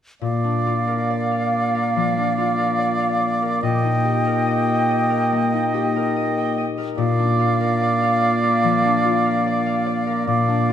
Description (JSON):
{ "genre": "classical, slow romantic movement for symphony orchestra", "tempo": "72 BPM", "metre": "4/4", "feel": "rubato", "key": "Bb major", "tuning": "A4 = 440 Hz", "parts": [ { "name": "clear oboe", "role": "second line", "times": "0.2-10.7 s", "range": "D5 to Eb5", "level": "-23 LUFS", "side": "right 3 dB", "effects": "none" }, { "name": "concert flute", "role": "second line", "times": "0.2-10.7 s", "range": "F5 to G5", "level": "-24 LUFS", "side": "equal", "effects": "none" }, { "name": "mellow clarinet", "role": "second line", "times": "0.2-10.7 s", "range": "Bb3", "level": "-25 LUFS", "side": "right 1 dB", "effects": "none" }, { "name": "concert harp", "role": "arpeggios", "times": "0.2-10.7 s", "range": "Bb2 to G5", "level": "-22 LUFS", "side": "left 3 dB", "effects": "none" } ], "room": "wet scoring stage reverb, RT60 1.8 s", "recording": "none", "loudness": "-18 LUFS", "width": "side -9 dB against mid", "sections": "0.2-10.7 A section", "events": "none", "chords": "0.2 Bb; 3.6 Eb/Bb; 7.0 Bb", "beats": "| 0.22 1.10 1.96 2.79 | 3.63 4.47 5.32 6.16 | 6.97 7.80 8.63 9.46 | 10.28" }